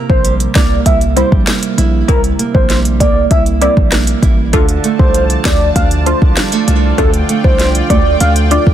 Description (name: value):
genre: dancehall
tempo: 98 BPM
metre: 4/4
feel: straight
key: D minor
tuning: A4 = 440 Hz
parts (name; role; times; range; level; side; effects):
- punchy chord stab; accompaniment; 0.0-8.7 s; A3 to F4; -20 LUFS; left 2 dB; chorus
- fingerpicked steel-string acoustic guitar; arpeggios; 0.0-8.7 s; C3 to E4; -18 LUFS; right 7 dB; digital delay
- warm velvety synth lead; melody; 0.1-8.6 s; A4 to F5; -17 LUFS; equal; chorus, digital delay
- hard-hitting 808-style bass; bass; 0.1-8.7 s; A1 to D2; -14 LUFS; equal; none
- afro-pop drum kit; drums; 0.1-8.7 s; hi-hat, kick drum, rim click, snare drum; -13 LUFS; equal; none
- lush unison pad; sustained chords; 4.5-8.7 s; F4 to A5; -22 LUFS; equal; chorus
room: little or no reverb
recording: dense, heavily limited modern master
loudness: -9 LUFS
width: side -10 dB against mid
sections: 0.0-8.7 A section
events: none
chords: 0.0 C7; 4.5 Dm